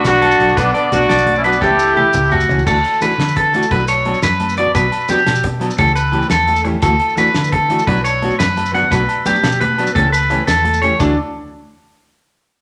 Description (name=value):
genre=highlife guitar band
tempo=115 BPM (dotted quarters)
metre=12/8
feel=straight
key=D major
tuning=A4 = 441 Hz
part: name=warm horn section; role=melody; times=0.0-2.4 s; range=B3 to G4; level=-16 LUFS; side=equal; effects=none
part: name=mellow trumpet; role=second line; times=0.0-2.5 s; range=B3 to E4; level=-27 LUFS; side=equal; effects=none
part: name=electric guitar at the edge of break-up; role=arpeggios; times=0.0-11.2 s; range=D4 to F#5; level=-18 LUFS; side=equal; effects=none
part: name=vintage muted fingered electric bass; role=bass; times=0.0-11.2 s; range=B1 to D3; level=-23 LUFS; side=equal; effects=none
part: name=damped 70s drum kit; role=drums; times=0.0-11.1 s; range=crash cymbal, hi-hat, kick drum, snare drum, toms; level=-25 LUFS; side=equal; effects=none
part: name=congas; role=percussion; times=0.1-11.2 s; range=none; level=-29 LUFS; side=equal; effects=none
part: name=maracas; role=percussion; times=0.1-11.2 s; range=none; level=-35 LUFS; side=equal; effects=none
part: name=agogo bells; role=percussion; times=0.2-11.1 s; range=none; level=-30 LUFS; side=equal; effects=none
part: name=nylon-string guitar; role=accompaniment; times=0.4-11.1 s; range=E3 to G4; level=-24 LUFS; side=equal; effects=none
room=moderate large studio reverb, RT60 1.1 s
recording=none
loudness=-15 LUFS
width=mono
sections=0.0-2.7 A section; 2.7-11.0 B section; 11.0-12.6 C section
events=drum fill 1.6-2.7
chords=0.0 Bm; 1.6 A7/C#; 2.7 Dadd9; 3.7 Bm; 4.8 Gmaj7/B; 5.8 A7/C#; 6.8 Dadd9; 7.9 Bm; 8.9 Gmaj7/B; 10.0 A7/C#; 11.0 D5